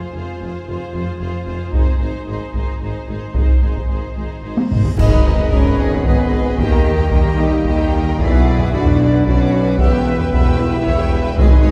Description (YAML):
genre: cinematic, epic orchestral film score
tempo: 112 BPM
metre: 3/4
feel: straight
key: G# harmonic minor from 5.0 s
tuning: A4 = 441 Hz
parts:
  - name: clear symphonic violin section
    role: melody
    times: 0.0-11.7 s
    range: E4 to C#5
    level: -33 LUFS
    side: equal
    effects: none
  - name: clear symphonic violin section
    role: second line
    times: 0.0-11.7 s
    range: Ab4 to E6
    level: -34 LUFS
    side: equal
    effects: none
  - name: clear symphonic viola section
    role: accompaniment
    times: 0.0-11.7 s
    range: Eb4 to G5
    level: -30 LUFS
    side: equal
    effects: none
  - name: mellow French horn section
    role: sustained chords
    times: 0.1-11.7 s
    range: Ab3 to E4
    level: -24 LUFS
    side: equal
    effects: none
  - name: clear tuba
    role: bass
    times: 0.1-11.7 s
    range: E1 to D#2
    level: -29 LUFS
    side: equal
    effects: none
  - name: rich symphonic cello section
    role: bass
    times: 0.1-11.7 s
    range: E2 to D#3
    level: -28 LUFS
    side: equal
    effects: none
  - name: rich symphonic double bass section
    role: bass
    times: 0.2-11.7 s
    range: E1 to D#2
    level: -26 LUFS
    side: equal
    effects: none
  - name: taiko ensemble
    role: drums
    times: 1.7-11.7 s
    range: none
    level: -19 LUFS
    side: equal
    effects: none
  - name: reverse cymbal and impact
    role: sound effects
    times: 4.8-6.6 s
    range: none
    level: -33 LUFS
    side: equal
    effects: none
  - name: concert flute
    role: second line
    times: 5.0-11.7 s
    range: A#4 to E5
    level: -29 LUFS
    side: equal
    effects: none
  - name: warm trombone section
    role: sustained chords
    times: 5.0-11.7 s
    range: D#3 to B3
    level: -30 LUFS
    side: equal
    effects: none
  - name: clash cymbals and concert bass drum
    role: percussion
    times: 5.0-6.0 s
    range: none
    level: -26 LUFS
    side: equal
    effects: none
  - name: timpani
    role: percussion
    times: 11.4-11.7 s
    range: G#2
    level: -22 LUFS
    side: equal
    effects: none
room: wet concert hall reverb, RT60 1.8 s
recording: heard from further back in the room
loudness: -16 LUFS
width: mono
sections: 0.0-5.0 A section; 5.0-11.7 B section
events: drum fill 4.6-5.0; reverse cymbal 4.8; band accent 5.0-5.5; impact 5.0-6.6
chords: 0.0 Fm; 1.7 Ab; 5.0 G#m; 6.6 D#; 8.2 Bm; 9.8 Em